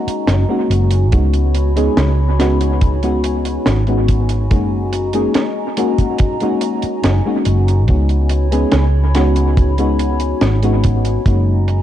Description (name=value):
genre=vaporwave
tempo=71 BPM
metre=4/4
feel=straight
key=F# major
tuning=A4 = 440 Hz
part: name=mellow FM electric piano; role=accompaniment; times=0.0-11.8 s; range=G#3 to G#4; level=-18 LUFS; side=left 2 dB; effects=wide subtle chorus, analog delay
part: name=warbly tape-like pad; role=sustained chords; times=0.0-11.8 s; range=F#4 to B5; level=-25 LUFS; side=right 1 dB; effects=chorus, built-in reverb
part: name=hollow-body short-scale fingered electric bass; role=bass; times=0.1-11.8 s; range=F#1 to C#2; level=-15 LUFS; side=equal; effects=none
part: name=deep reggae drum kit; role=drums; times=0.1-11.8 s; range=hi-hat, snare drum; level=-22 LUFS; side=right 1 dB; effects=studio reverb, analog delay
part: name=kick drum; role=drums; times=1.1-11.4 s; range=none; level=-15 LUFS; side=equal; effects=studio reverb
room=studio ambience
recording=echo-heavy mix, cassette tape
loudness=-13 LUFS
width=side -11 dB against mid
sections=0.0-11.8 A section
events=none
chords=0.0 F#69; 1.1 C#7sus4; 4.5 F#69; 7.9 C#7sus4; 11.3 F#69